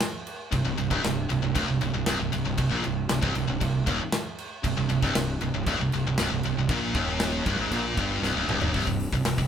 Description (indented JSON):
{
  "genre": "heavy metal",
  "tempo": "117 BPM",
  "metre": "4/4",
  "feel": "straight",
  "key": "C minor",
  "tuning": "A4 = 440 Hz",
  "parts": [
    { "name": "modern studio drum kit", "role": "drums", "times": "0.0-9.5 s", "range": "crash cymbal, hi-hat, kick drum, snare drum, toms", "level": "-30 LUFS", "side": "equal", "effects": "none" },
    { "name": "heavy high-gain guitar", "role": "riff", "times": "0.5-9.5 s", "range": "C2 to Bb2", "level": "-29 LUFS", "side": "left 6 dB", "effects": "distortion" },
    { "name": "high-gain distorted guitar", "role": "riff", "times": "0.5-9.5 s", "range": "C2 to Bb2", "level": "-28 LUFS", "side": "right 6 dB", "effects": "distortion" },
    { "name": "fuzz fingered electric bass", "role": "bass", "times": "0.5-9.5 s", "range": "C1 to Bb1", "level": "-31 LUFS", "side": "left 1 dB", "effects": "overdrive" }
  ],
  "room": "moderate studio reverb, RT60 0.9 s",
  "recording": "band playing live in one room",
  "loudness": "-24 LUFS",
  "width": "side -8 dB against mid",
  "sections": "0.0-8.7 A section",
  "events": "drum fill 8.2-8.7",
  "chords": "0.0 Cm; 8.7 N.C.",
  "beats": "0.00 | 0.52 1.04 1.55 2.07 | 2.58 3.10 3.61 4.13 | 4.64 5.15 5.67 6.18 | 6.69 7.21 7.72 8.23 | 8.74 9.26"
}